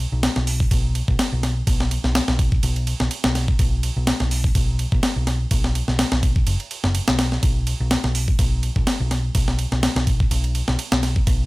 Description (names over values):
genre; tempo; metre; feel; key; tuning
breakbeat, breaks; 125 BPM; 4/4; swing 54% on 16ths; unclear; A4 = 435 Hz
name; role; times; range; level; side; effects
hollow-body short-scale picked electric bass; bass; 0.0-11.5 s; F#1 to B1; -22 LUFS; equal; none
breakbeat sampler-style drum kit; drums; 0.2-11.4 s; hi-hat, kick drum, ride cymbal, snare drum; -20 LUFS; equal; none
room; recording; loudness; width
little or no reverb; none; -18 LUFS; side -21 dB against mid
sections
0.0-11.5 A section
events
none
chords
none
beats
0.23 0.71 1.19 | 1.67 2.15 2.63 3.11 | 3.59 4.07 4.55 5.03 | 5.51 5.99 6.47 6.95 | 7.43 7.91 8.39 8.87 | 9.35 9.83 10.31 10.79 | 11.27